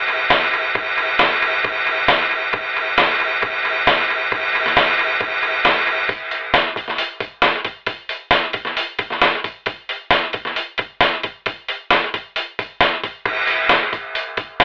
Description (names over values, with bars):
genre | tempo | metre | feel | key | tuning
rock | 134 BPM | 4/4 | straight | none | none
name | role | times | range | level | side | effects
lo-fi sampler-style drum kit | drums | 0.1-14.6 s | crash cymbal, hi-hat, kick drum, snare drum | -16 LUFS | equal | none
room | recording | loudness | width
moderate booth ambience, RT60 0.2 s | rough rehearsal-room recording, warm saturation, telephone sound | -15 LUFS | side -30 dB against mid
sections
0.0-6.1 A section; 6.1-14.6 B section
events
none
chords
none